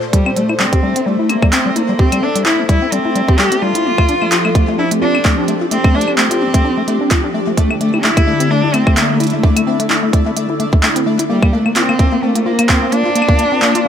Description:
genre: IDM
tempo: 129 BPM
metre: 4/4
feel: swing 56% on 16ths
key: A phrygian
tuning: A4 = 440 Hz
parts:
  - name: phased analog pad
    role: sustained chords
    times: 0.0-13.9 s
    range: Bb2 to E5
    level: -20 LUFS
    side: left 1 dB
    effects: phaser, chorus, sidechain pumping
  - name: pulsing gated texture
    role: texture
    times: 0.0-13.9 s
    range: A3 to D5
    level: -28 LUFS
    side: left 1 dB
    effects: chorus, built-in reverb
  - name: warm cello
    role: melody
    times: 0.1-13.9 s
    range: G3 to G4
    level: -17 LUFS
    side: equal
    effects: ping-pong delay
  - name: deep acid bass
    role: arpeggios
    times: 0.1-13.9 s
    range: G3 to G4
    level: -18 LUFS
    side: left 3 dB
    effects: cassette tape, tape echo
  - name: electronic kick drum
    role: drums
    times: 0.1-13.4 s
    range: none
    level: -13 LUFS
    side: right 1 dB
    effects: overdrive
  - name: glitchy drum kit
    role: drums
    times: 0.1-13.8 s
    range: claves, handclaps, hi-hat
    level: -18 LUFS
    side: equal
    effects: overdrive
room: light reverb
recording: none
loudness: -12 LUFS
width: side -8 dB against mid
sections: 0.0-13.9 A section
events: none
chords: 0.1 Am7; 3.9 F6; 7.6 Dsus2; 11.3 Bb

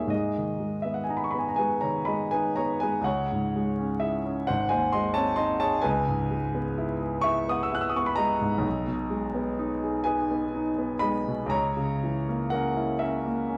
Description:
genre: classical, romantic nocturne for solo piano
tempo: 42 BPM (dotted quarters)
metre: 6/8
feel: uneven beats, rubato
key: G# minor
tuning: A4 = 440 Hz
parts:
  - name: warm grand piano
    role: solo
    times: 0.0-13.6 s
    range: G#1 to F#6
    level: -27 LUFS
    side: equal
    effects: none
room: wet recital hall reverb, RT60 1.4 s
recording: worn, warbling old tape, cassette tape, vinyl crackle, warbly pitch drift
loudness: -27 LUFS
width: mono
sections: 0.0-13.6 A section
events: none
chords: 0.1 G#m; 3.1 C#m; 4.5 G#; 5.9 C#m7; 8.7 G#m/B; 11.5 A#dim/C#

